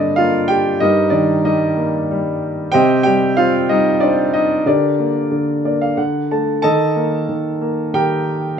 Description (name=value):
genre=classical, lyrical solo piano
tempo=93 BPM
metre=3/4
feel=rubato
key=unclear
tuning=A4 = 441 Hz
part: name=warm baby grand piano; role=solo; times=0.0-8.6 s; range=G2 to A5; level=-14 LUFS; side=equal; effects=none
room=light reverb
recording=minimal, uncompressed stereo recording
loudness=-14 LUFS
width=side -7 dB against mid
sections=0.0-8.6 A section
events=grand piano fill 5.3-6.6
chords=0.0 Gm; 0.8 Eb/G; 2.7 Cm; 4.7 Gm/D; 6.0 D; 6.6 Eb